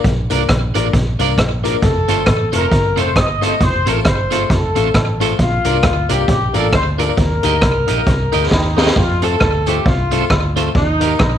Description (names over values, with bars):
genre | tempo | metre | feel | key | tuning
ska | 134 BPM | 4/4 | swing 59% on 8ths | F mixolydian | A4 = 440 Hz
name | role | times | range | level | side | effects
vintage muted fingered electric bass | bass | 0.0-11.4 s | F1 to F2 | -20 LUFS | equal | none
street-band drum kit | drums | 0.0-11.3 s | hi-hat, kick drum, rim click, snare drum | -16 LUFS | equal | slapback echo
electric guitar at the edge of break-up | accompaniment | 0.3-11.1 s | Bb3 to Eb5 | -23 LUFS | right 12 dB | tremolo, slapback echo
warm upright piano | stabs | 0.3-11.1 s | A3 to Bb4 | -23 LUFS | left 12 dB | slapback echo
tambourine | percussion | 0.3-11.1 s | none | -37 LUFS | left 10 dB | slapback echo
mellow horn section | melody | 1.8-11.4 s | Eb4 to Eb5 | -19 LUFS | left 1 dB | none
room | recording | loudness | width
light reverb | 1960s-style stereo with parts hard left and right | -13 LUFS | side -10 dB against mid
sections
0.0-9.0 A section; 9.0-11.4 B section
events
drum fill 8.5-9.0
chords
0.0 Bb; 1.8 F; 5.4 Bb; 7.2 Eb; 9.0 F; 10.8 Eb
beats
| 0.04 0.49 0.94 1.38 | 1.83 2.27 2.72 3.16 | 3.61 4.05 4.50 4.95 | 5.39 5.84 6.28 6.73 | 7.18 7.62 8.07 8.52 | 8.96 9.41 9.86 10.30 | 10.75 11.20